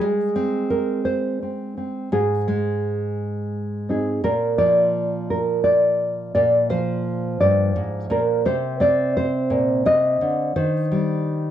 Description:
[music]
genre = folk, solo fingerstyle acoustic guitar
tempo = 57 BPM (dotted quarters)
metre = 6/8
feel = straight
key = unclear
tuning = A4 = 439 Hz
[part]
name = nylon-string guitar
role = solo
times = 0.0-11.5 s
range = G2 to Eb5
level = -19 LUFS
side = equal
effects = slapback echo
[sound]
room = light reverb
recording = dark, warm production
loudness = -19 LUFS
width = side -10 dB against mid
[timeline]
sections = 0.0-11.5 A section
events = none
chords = 0.0 Ab; 4.2 Bb; 8.5 Cm; 10.6 Eb6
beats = | 0.02 1.07 | 2.13 3.18 | 4.24 5.29 | 6.35 7.40 | 8.46 9.51 | 10.56

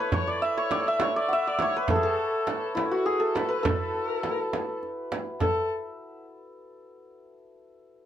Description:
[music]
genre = Persian modal ensemble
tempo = 68 BPM (dotted quarters)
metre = 6/8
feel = straight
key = A dastgah mahur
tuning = A4 = 442 Hz
[part]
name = santur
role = melody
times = 0.0-6.2 s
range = E4 to F#5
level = -26 LUFS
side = equal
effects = plate reverb
[part]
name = rich kamancheh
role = second line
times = 0.0-5.7 s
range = E4 to E5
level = -33 LUFS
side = left 5 dB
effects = none
[part]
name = frame drum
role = percussion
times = 0.1-5.7 s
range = none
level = -32 LUFS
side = right 4 dB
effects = none
[part]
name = tombak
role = percussion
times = 0.1-5.7 s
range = none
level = -32 LUFS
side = right 2 dB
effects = none
[sound]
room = moderate studio reverb, RT60 0.5 s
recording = none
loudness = -24 LUFS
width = side -10 dB against mid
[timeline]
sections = 0.0-5.4 A section; 5.4-7.2 B section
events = none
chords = none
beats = | 0.12 1.00 | 1.88 2.76 | 3.65 4.53 | 5.41

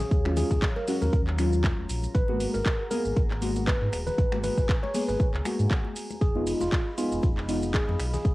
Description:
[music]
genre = deep house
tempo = 118 BPM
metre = 4/4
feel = swing 55% on 16ths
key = unclear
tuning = A4 = 439 Hz
[part]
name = tine electric piano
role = melody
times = 0.0-8.3 s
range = F4 to Db5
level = -32 LUFS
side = equal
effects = fast stereo tremolo, cassette tape, analog delay
[part]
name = dark analog pad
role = sustained chords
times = 0.0-8.3 s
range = Gb3 to Cb6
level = -42 LUFS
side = equal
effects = chorus, vintage 12-bit sampler grit, sidechain pumping
[part]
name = deep mellow chord stab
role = stabs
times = 0.0-8.3 s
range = Gb3 to Ab4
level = -31 LUFS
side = equal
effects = chorus, phaser, sidechain pumping, tape echo
[part]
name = sub bass with octave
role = bass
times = 0.0-8.3 s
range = Eb1 to Ab2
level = -29 LUFS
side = equal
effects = transformer saturation, sidechain pumping
[part]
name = dusty soul sampler-style drum kit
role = drums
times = 0.0-8.3 s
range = hi-hat, snare drum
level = -45 LUFS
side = equal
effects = none
[part]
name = house drum kit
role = drums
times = 0.0-8.3 s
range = finger snaps, handclaps, hi-hat, ride cymbal, shaker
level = -36 LUFS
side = equal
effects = cassette tape
[part]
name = congas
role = percussion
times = 0.0-8.3 s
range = none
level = -40 LUFS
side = left 6 dB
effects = none
[part]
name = electronic kick drum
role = drums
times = 0.1-8.3 s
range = none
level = -25 LUFS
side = equal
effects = cassette tape
[sound]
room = light reverb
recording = home recording on cassette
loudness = -24 LUFS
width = side -19 dB against mid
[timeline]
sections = 0.0-8.3 A section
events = none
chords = 0.0 Ebm11; 2.1 Abm9; 6.2 Fm7b5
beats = | 0.11 0.62 1.13 1.64 | 2.15 2.66 3.17 3.67 | 4.18 4.69 5.20 5.71 | 6.22 6.72 7.23 7.74 | 8.25

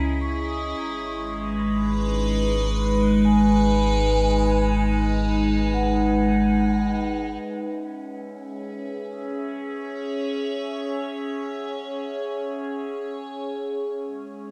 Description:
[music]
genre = ambient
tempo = free time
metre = none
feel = none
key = C# minor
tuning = A4 = 442 Hz
[part]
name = evolving wavetable pad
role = sustained chords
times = 0.0-14.5 s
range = G#3 to E5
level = -26 LUFS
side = equal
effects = phaser, built-in reverb
[part]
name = vibraphone with medium mallets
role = arpeggios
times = 0.0-14.5 s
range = E5 to D#6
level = -34 LUFS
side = equal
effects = analog delay
[part]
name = warm sub bass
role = bass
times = 0.0-7.4 s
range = G#1 to C#2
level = -28 LUFS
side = equal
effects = none
[sound]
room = wet spring reverb, RT60 2.8 s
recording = echo-heavy mix, cassette tape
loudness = -24 LUFS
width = mono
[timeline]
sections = 0.0-7.4 A section; 7.4-14.5 B section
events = none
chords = 0.0 C#m7; 0.8 G#m7; 7.4 C#m7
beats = free time

